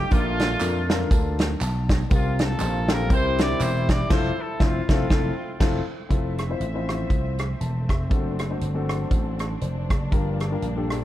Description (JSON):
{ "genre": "uptempo gospel", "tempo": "120 BPM", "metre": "4/4", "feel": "swing 57% on 8ths", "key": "F major", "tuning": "A4 = 441 Hz", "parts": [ { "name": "clear horn section", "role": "melody", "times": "0.0-5.8 s", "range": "A3 to D5", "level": "-28 LUFS", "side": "equal", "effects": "none" }, { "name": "warm concert grand piano", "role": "accompaniment", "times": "0.0-11.0 s", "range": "G2 to A5", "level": "-29 LUFS", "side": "left 4 dB", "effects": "none" }, { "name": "vintage slap bass", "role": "bass", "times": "0.0-11.0 s", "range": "E1 to F2", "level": "-26 LUFS", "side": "equal", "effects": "none" }, { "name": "natural country drum kit", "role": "drums", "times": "0.1-11.0 s", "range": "crash cymbal, hi-hat, kick drum, rim click, snare drum", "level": "-23 LUFS", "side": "equal", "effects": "none" }, { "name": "tambourine and handclaps", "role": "percussion", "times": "0.1-4.0 s", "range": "none", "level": "-38 LUFS", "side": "right 4 dB", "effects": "none" }, { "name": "warm studio string section", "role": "sustained chords", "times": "6.1-11.0 s", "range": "F3 to E5", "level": "-35 LUFS", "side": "right 1 dB", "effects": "none" } ], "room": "light reverb", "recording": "dark, warm production", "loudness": "-21 LUFS", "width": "side -13 dB against mid", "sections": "0.0-6.1 A section; 6.1-11.0 B section", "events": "grand piano fill 0.6-2.1; band accent 4.1-6.1", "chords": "0.1 Bbmaj7; 2.1 C7sus4; 3.1 C7; 4.1 Fmaj7; 8.1 D7/F#; 10.1 Gm7" }